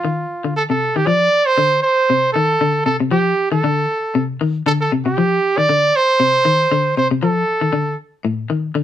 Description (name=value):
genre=afrobeat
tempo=117 BPM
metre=4/4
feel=swing 54% on 16ths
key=F mixolydian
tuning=A4 = 440 Hz
part: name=clear trumpet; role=melody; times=0.0-8.0 s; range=F4 to D5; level=-16 LUFS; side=right 2 dB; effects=none
part: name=clean electric guitar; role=arpeggios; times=0.0-8.8 s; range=A2 to F3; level=-19 LUFS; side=left 4 dB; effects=none
room=moderate studio ambience, RT60 0.5 s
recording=band playing live in one room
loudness=-14 LUFS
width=side -10 dB against mid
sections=0.0-1.1 A section; 1.1-8.8 B section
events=none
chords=0.0 F5; 1.1 F7